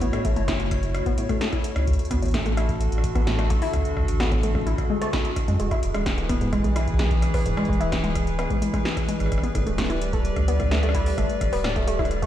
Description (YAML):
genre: IDM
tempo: 129 BPM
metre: 4/4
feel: straight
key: unclear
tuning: A4 = 435 Hz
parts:
  - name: warbly tape-like pad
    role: sustained chords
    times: 0.0-12.3 s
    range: D3 to D5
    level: -28 LUFS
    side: equal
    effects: chorus, built-in reverb
  - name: warbly dusty pluck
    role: arpeggios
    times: 0.0-12.3 s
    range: G#2 to E4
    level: -28 LUFS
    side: left 1 dB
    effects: chorus, digital delay
  - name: warm sub bass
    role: bass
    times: 0.0-12.3 s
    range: D1 to F#2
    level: -25 LUFS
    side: equal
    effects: none
  - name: electro analog drum machine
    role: drums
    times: 0.0-12.3 s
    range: hi-hat, rim click, snare drum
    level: -31 LUFS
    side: equal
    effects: ping-pong delay
  - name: electronic kick drum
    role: drums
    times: 0.2-12.3 s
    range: none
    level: -27 LUFS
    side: equal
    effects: none
room: light reverb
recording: played on a big sound system in a bare room, stone room reverb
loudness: -21 LUFS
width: side -11 dB against mid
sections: 0.0-12.3 A section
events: none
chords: 0.0 A6; 1.9 D; 5.6 E; 9.3 G